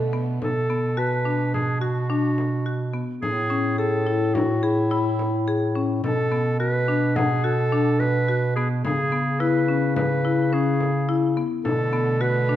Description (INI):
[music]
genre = contemporary instrumental, chamber music in an uneven meter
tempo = 107 BPM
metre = 5/4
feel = straight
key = B dorian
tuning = A4 = 440 Hz
[part]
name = rich chamber string section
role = sustained chords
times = 0.0-0.4, 11.7-12.6 s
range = D3 to B3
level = -33 LUFS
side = right 2 dB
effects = none
[part]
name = mellow bass clarinet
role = bass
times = 0.0-12.6 s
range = A2 to C#3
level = -24 LUFS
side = right 1 dB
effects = none
[part]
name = celesta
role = texture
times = 0.0-8.5 s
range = E5 to B5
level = -33 LUFS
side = left 5 dB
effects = none
[part]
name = marimba with medium hard mallets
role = arpeggios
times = 0.1-12.6 s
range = B3 to G#4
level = -26 LUFS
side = left 4 dB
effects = none
[part]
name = clear clarinet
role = melody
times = 0.4-12.6 s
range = E4 to B4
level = -26 LUFS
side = right 1 dB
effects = none
[part]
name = frame drum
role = percussion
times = 0.4-12.6 s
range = none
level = -31 LUFS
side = left 3 dB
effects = none
[sound]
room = moderate recital hall reverb, RT60 1.4 s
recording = dark, warm production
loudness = -20 LUFS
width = side -12 dB against mid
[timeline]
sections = 0.4-12.6 A section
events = none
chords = 0.4 Bm7; 3.2 Amaj7(no3); 6.0 Bm7; 8.8 C#m7; 11.7 Bm7